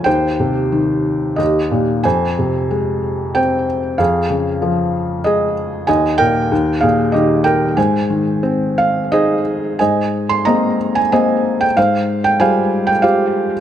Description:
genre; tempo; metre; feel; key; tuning
classical, lyrical solo piano; 86-96 BPM; 3/4; rubato; Ab major; A4 = 439 Hz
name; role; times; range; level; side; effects
felt-muted upright piano; solo; 0.0-13.6 s; Eb2 to C6; -14 LUFS; equal; tape echo
room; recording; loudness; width
wet studio reverb, RT60 0.7 s; none; -14 LUFS; side -10 dB against mid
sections
0.0-9.8 A section; 9.8-13.6 B section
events
felt piano fill 8.4-9.8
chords
0.1 Eb6; 1.4 Eb; 2.0 Fmadd9; 4.0 Dbadd9/F; 5.9 Ebsus4; 6.5 Eb; 7.8 Ab; 9.8 Abadd9; 11.8 Fmadd9/Ab

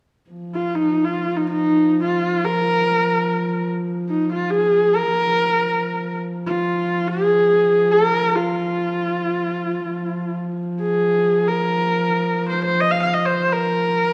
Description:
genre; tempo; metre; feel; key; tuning
mongolian traditional, Mongolian folk; free time; none; none; F yu mode; A4 = 440 Hz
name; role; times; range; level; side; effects
dark horsehead fiddle; drone; 0.3-14.1 s; F3; -27 LUFS; equal; none
rich horsehead fiddle; melody; 0.5-14.1 s; Eb4 to F5; -20 LUFS; equal; none
room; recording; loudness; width
moderate recital hall reverb, RT60 1.5 s; dark, warm production; -20 LUFS; mono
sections
0.3-14.1 A section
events
none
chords
none

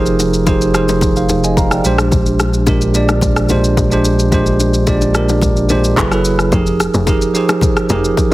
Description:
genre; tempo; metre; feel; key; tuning
amapiano; 109 BPM; 4/4; straight; F dorian; A4 = 442 Hz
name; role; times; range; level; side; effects
bell-like tine electric piano; accompaniment; 0.0-8.3 s; Bb2 to Bb5; -14 LUFS; right 2 dB; none
saturated sub bass; bass; 0.0-6.5 s; F1 to Bb1; -17 LUFS; left 1 dB; none
afro-pop drum kit; drums; 0.1-8.3 s; handclaps, kick drum, rim click, shaker; -17 LUFS; left 1 dB; none
bongos and congas; percussion; 0.2-8.3 s; none; -23 LUFS; left 4 dB; none
tight log drum bass; bass; 6.5-8.3 s; F1; -17 LUFS; left 1 dB; none
room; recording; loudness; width
digital ambience; heavily compressed radio sound, multiband compression; -11 LUFS; side -17 dB against mid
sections
0.0-8.3 A section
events
none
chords
0.0 Fm11; 1.8 Bb13; 6.0 Gbm11; 6.5 Fm11

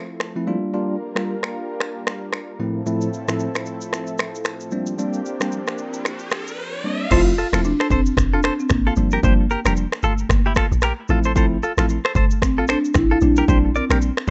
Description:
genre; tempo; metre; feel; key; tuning
afrobeats; 113 BPM; 4/4; swing 58% on 16ths; F major; A4 = 440 Hz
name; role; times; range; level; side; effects
lush unison pad; sustained chords; 0.0-7.1 s; A2 to Bb4; -32 LUFS; equal; chorus, sidechain pumping
afro-pop drum kit; drums; 0.2-14.3 s; crash cymbal, finger snaps, kick drum, rim click, shaker; -25 LUFS; equal; none
bell-like tine electric piano; accompaniment; 0.4-14.1 s; A2 to F4; -25 LUFS; equal; none
riser; sound effects; 5.6-7.1 s; none; -33 LUFS; equal; none
marimba with soft mallets; melody; 7.1-14.3 s; A3 to F4; -24 LUFS; equal; none
direct-recorded clean electric guitar; riff; 7.1-14.0 s; E4 to D5; -26 LUFS; equal; subtle chorus, digital delay
deep log drum bass; bass; 7.1-14.3 s; E1 to Bb1; -23 LUFS; equal; none
room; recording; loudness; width
little or no reverb; rough home demo mix, nothing above 8.0 kHz; -21 LUFS; mono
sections
0.0-7.1 A section; 7.1-14.3 B section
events
riser 5.6-7.1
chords
0.5 Gm7; 2.6 Fmaj7/A; 4.7 Bb69; 7.1 Fmaj7; 9.0 Gm7; 11.1 Fmaj7/A; 13.2 Bb69

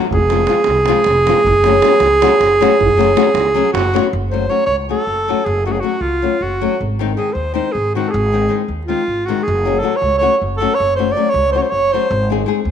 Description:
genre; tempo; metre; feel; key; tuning
balkan folk, Balkan wedding band; 315 BPM (eighths); 7/8; straight; F# hungarian minor; A4 = 438 Hz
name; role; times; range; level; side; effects
nylon-string guitar; accompaniment; 0.0-12.6 s; D#3 to G#4; -19 LUFS; left 9 dB; none
davul; percussion; 0.0-4.1 s; none; -21 LUFS; right 9 dB; none
clear alto saxophone; melody; 0.1-12.3 s; E#4 to D5; -15 LUFS; right 2 dB; none
upright bass; bass; 0.1-12.7 s; F1 to D#2; -21 LUFS; right 1 dB; none
room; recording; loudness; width
wet echo chamber reverb, RT60 1.6 s, studio reverb; 1960s-style stereo with parts hard left and right; -13 LUFS; side -8 dB against mid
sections
0.0-4.1 A section; 4.1-12.7 B section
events
alto saxophone solo 4.1-12.7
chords
0.1 Fm; 1.5 F#m; 6.8 G#; 9.5 F#m; 12.1 G#

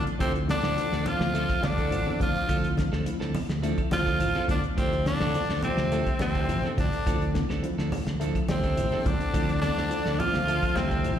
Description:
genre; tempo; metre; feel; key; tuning
afrobeat; 105 BPM; 4/4; straight; D minor; A4 = 441 Hz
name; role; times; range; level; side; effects
raspy tenor saxophone; melody; 0.0-11.2 s; C4 to F4; -29 LUFS; equal; slapback echo
clear bass trombone; second line; 0.0-11.2 s; C3 to F3; -35 LUFS; left 2 dB; slapback echo
warm trumpet; second line; 0.0-11.2 s; C5 to F5; -40 LUFS; right 2 dB; none
mellow tine electric piano; accompaniment; 0.0-11.2 s; F3 to F4; -37 LUFS; equal; medium stereo tremolo, slapback echo
electric guitar through a small old amp; arpeggios; 0.0-11.2 s; D3 to A3; -37 LUFS; left 5 dB; slapback echo
fingered electric bass; bass; 0.0-11.2 s; A1 to D2; -29 LUFS; equal; none
damped 70s drum kit; drums; 0.1-11.2 s; hi-hat, kick drum, snare drum; -31 LUFS; equal; none
semi-hollow electric guitar; stabs; 0.2-11.1 s; F3 to A4; -37 LUFS; right 7 dB; slapback echo
claves; percussion; 0.2-11.2 s; none; -49 LUFS; left 2 dB; none
congas; percussion; 0.5-10.9 s; none; -33 LUFS; right 1 dB; slapback echo
room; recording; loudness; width
studio reverb; live gig heard through the venue's PA, recital hall reverb; -24 LUFS; side -9 dB against mid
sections
0.0-11.2 A section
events
none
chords
0.0 Dm9

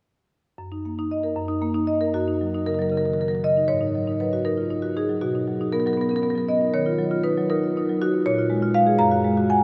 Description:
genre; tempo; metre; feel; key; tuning
classical, contemporary piece for solo marimba; 79 BPM (dotted quarters); 6/8; rubato; F# major; A4 = 440 Hz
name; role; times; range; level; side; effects
marimba with medium hard mallets; solo; 0.6-9.6 s; F#2 to A#5; -23 LUFS; equal; none
room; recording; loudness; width
wet huge ambient reverb, RT60 8.0 s; in a vast, echoing space; -23 LUFS; mono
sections
0.6-2.1 A section; 2.1-9.6 B section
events
none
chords
0.6 F#6; 3.7 G#5; 5.2 Bmaj7; 6.7 D#madd9; 8.2 A#m7; 9.0 F#add9

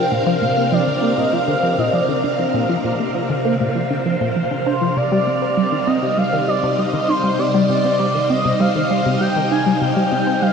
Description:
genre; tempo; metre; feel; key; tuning
ambient, sequencer-driven space music; 99 BPM; 4/4; straight; C minor; A4 = 440 Hz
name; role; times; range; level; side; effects
pulse-width lead; melody; 0.0-10.5 s; C5 to Ab5; -21 LUFS; right 1 dB; chorus, shimmer reverb, analog delay
phased string machine; sustained chords; 0.0-10.5 s; C3 to F5; -20 LUFS; equal; ensemble chorus, phaser, shimmer reverb
tight sequenced synth; riff; 0.0-10.5 s; Bb2 to Eb4; -20 LUFS; equal; chorus, analog delay
wind-like tuned noise texture; texture; 0.0-10.5 s; F5; -30 LUFS; equal; built-in reverb, shimmer reverb
room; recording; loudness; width
wet huge ambient reverb, RT60 8.1 s; none; -16 LUFS; side -6 dB against mid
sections
0.0-10.5 A section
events
none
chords
0.0 Bb; 5.0 Cm

